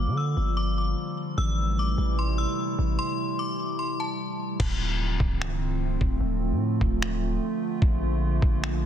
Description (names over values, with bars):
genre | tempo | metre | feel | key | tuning
hip hop, atmospheric cloud-rap | 149 BPM | 4/4 | half-time | D minor | A4 = 440 Hz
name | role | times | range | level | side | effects
metallic FM bell | melody | 0.0-4.2 s | A5 to E6 | -32 LUFS | left 3 dB | chorus, low-pass filter, tape echo
warbly tape-like pad | sustained chords | 0.0-8.9 s | C3 to F4 | -30 LUFS | right 1 dB | chorus, built-in reverb, sidechain pumping, low-pass filter
long sustained 808-style bass | bass | 0.0-8.9 s | C1 to D3 | -26 LUFS | equal | none
trip hop sampler-style drum kit | drums | 4.6-8.7 s | crash cymbal, finger snaps, kick drum | -26 LUFS | equal | vintage 12-bit sampler grit, soft clipping on snare
room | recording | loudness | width
little or no reverb | dense, heavily limited modern master | -24 LUFS | side -10 dB against mid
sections
0.0-4.6 A section; 4.6-8.9 B section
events
break 3.0-4.6; hi-hats muted 4.6-8.9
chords
0.0 Gm7; 1.4 Am7; 4.6 Dm7; 7.8 Bbmaj7